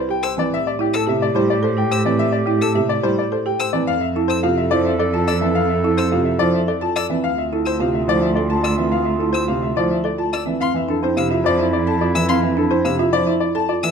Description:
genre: classical, minimalist pattern music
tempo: 107 BPM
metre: 3/4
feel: straight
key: F major from 10.6 s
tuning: A4 = 439 Hz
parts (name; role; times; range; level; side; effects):
- bright grand piano; melody; 0.0-13.9 s; G4 to A5; -22 LUFS; left 9 dB; none
- clear clarinet; second line; 0.0-13.8 s; E4 to A4; -26 LUFS; right 3 dB; none
- folk marimba with soft mallets; arpeggios; 0.0-13.9 s; C4 to B4; -22 LUFS; right 6 dB; none
- warm cello; bass; 0.0-13.8 s; C2 to A2; -24 LUFS; right 2 dB; none
- warm violin; arpeggios; 0.2-13.9 s; C6 to E6; -26 LUFS; left 5 dB; none
- dark grand piano; accompaniment; 0.4-13.9 s; C3 to C4; -24 LUFS; right 1 dB; none
room: light reverb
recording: none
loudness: -16 LUFS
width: side -6 dB against mid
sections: 0.0-10.6 A section; 10.6-13.9 B section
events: none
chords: 0.0 Cmaj7; 0.5 Am7; 3.9 Fmaj7; 7.2 Dmadd9; 10.6 Fmaj7

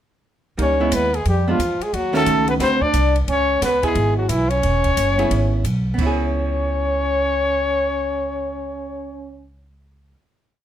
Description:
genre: jazz, small-group swing and bop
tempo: 178 BPM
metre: 4/4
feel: swing 64% on 8ths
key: C# minor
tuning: A4 = 442 Hz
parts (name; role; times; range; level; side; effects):
- breathy trumpet; melody; 0.6-9.4 s; E4 to D5; -21 LUFS; left 3 dB; none
- bright trombone; second line; 0.6-9.4 s; E3 to D4; -25 LUFS; right 4 dB; none
- archtop guitar, miked and amplified; accompaniment; 0.6-10.2 s; D3 to B4; -23 LUFS; right 2 dB; none
- upright bass; bass; 0.6-10.1 s; E1 to F2; -22 LUFS; equal; none
- compact cocktail drum kit; drums; 0.6-6.1 s; crash cymbal, hi-hat, kick drum, ride cymbal, snare drum; -30 LUFS; equal; none
room: moderate studio reverb, RT60 0.6 s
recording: minimal, uncompressed stereo recording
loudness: -17 LUFS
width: side -11 dB against mid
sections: 0.6-6.0 A section; 6.0-8.7 final chord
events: none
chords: 0.6 C#m7; 1.2 E7b9; 1.9 D#m7b5; 2.6 D6; 3.3 C#m7

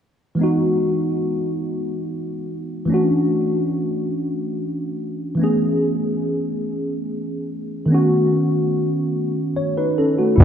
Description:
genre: slow six-eight R&B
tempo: 48 BPM (dotted quarters)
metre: 6/8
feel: straight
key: E major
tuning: A4 = 440 Hz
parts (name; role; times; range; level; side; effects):
- tine electric piano; accompaniment; 0.3-10.4 s; D#3 to C#5; -19 LUFS; equal; analog chorus
- vintage muted fingered electric bass; bass; 10.4 s; E1; -6 LUFS; equal; none
room: wet plate reverb, RT60 3.5 s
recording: dreamy mix soaked in reverb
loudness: -19 LUFS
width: side -9 dB against mid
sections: 0.4-10.4 A section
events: none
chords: 0.4 Emaj7; 2.9 Dmaj9; 5.4 Amaj7; 7.9 B9

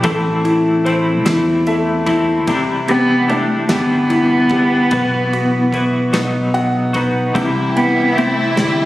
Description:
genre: six-eight pop ballad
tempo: 49 BPM (dotted quarters)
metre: 6/8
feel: straight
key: unclear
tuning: A4 = 441 Hz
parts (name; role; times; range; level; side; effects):
- clear concert grand piano; accompaniment; 0.0-8.9 s; C3 to G5; -18 LUFS; left 1 dB; none
- twelve-string electric guitar; arpeggios; 0.0-8.9 s; A2 to F#4; -21 LUFS; left 1 dB; tremolo
- fretless electric bass; bass; 0.0-8.9 s; G1 to E2; -21 LUFS; equal; none
- natural country drum kit; drums; 0.0-8.8 s; kick drum, ride cymbal, snare drum; -25 LUFS; equal; none
- dark cello; melody; 2.9-8.9 s; G3 to B3; -16 LUFS; equal; none
- warm studio violin section; second line; 7.3-8.9 s; E4; -20 LUFS; equal; none
- warm studio string section; sustained chords; 7.4-8.9 s; E4 to G5; -26 LUFS; equal; none
room: little or no reverb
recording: recorded on a phone in the room, club reverb, compression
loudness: -13 LUFS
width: side -16 dB against mid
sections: 0.0-8.9 A section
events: grand piano fill 1.3-2.5, 6.1-7.4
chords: 0.0 Am; 2.5 Cadd9; 4.9 Bsus4; 6.1 B; 7.4 C

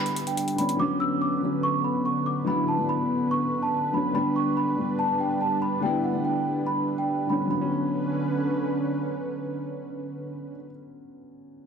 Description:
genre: hip hop, trap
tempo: 143 BPM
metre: 4/4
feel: half-time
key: B minor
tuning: A4 = 440 Hz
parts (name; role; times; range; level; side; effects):
- celesta; melody; 0.0-8.7 s; F#5 to E6; -28 LUFS; right 2 dB; wide subtle chorus, analog delay
- dark concert grand piano; accompaniment; 0.0-11.7 s; D3 to E4; -28 LUFS; left 2 dB; none
- warm analog pad; sustained chords; 0.0-10.6 s; D3 to B4; -30 LUFS; right 2 dB; chorus
- electronic hi-hat; drums; 0.1-0.8 s; none; -33 LUFS; left 1 dB; none
room: wet plate reverb, RT60 2.0 s, small room ambience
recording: dreamy mix soaked in reverb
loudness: -24 LUFS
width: side -6 dB against mid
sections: 0.0-7.5 A section; 7.5-10.9 B section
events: break 0.0-0.8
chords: 0.0 G; 0.8 Bmadd9; 4.2 G; 7.5 Bmadd9

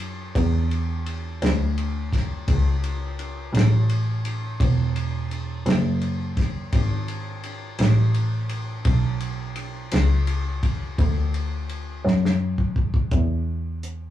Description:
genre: slow blues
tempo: 56 BPM (dotted quarters)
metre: 12/8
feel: straight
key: E mixolydian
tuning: A4 = 440 Hz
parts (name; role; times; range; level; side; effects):
- rich double bass; bass; 0.0-14.1 s; E1 to F#2; -23 LUFS; equal; none
- warm soul drum kit; drums; 0.0-14.0 s; hi-hat, kick drum, ride cymbal, snare drum; -26 LUFS; equal; none
room: moderate studio reverb, RT60 0.6 s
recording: rough rehearsal-room recording, warm saturation, small room ambience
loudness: -21 LUFS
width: side -12 dB against mid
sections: 0.0-13.1 A section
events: drum fill 12.1-13.1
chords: none

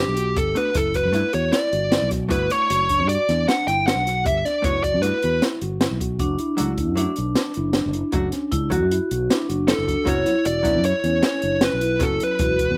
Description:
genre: progressive instrumental, band music in an uneven meter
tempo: 155 BPM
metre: 5/4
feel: straight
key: unclear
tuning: A4 = 440 Hz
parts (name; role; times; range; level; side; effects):
- fuzz lead guitar; melody; 0.0-5.4, 9.7-12.8 s; G4 to G5; -24 LUFS; equal; distortion
- mellow tine electric piano; arpeggios; 0.0-12.8 s; C#4 to G4; -32 LUFS; equal; none
- fretless electric bass; bass; 0.0-12.8 s; E1 to G2; -28 LUFS; equal; none
- open jazz drum kit; drums; 0.2-12.7 s; hi-hat, kick drum, snare drum; -27 LUFS; equal; none
- vintage hollow-body jazz guitar; accompaniment; 0.6-12.6 s; F#3 to A4; -31 LUFS; equal; slapback echo
- vibraphone with medium mallets; second line; 6.2-12.8 s; D4 to F#4; -27 LUFS; equal; none
room: little or no reverb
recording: recorded outdoors, with no room sound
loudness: -21 LUFS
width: mono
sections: 0.0-12.8 A section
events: none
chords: 0.0 Gmaj7; 6.2 D/F#; 10.1 F#sus4

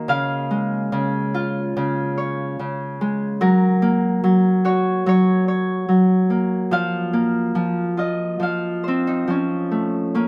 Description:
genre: children's music, lullaby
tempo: 72 BPM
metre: 4/4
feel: rubato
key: unclear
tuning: A4 = 440 Hz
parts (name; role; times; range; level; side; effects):
- Celtic harp; solo; 0.0-10.3 s; Db3 to F5; -20 LUFS; equal; none
room: moderate booth ambience, RT60 0.2 s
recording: close, detailed microphones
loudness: -20 LUFS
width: mono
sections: 0.0-10.2 A section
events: none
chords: 0.1 Db; 3.4 Gb; 6.7 Fsus4; 8.4 F

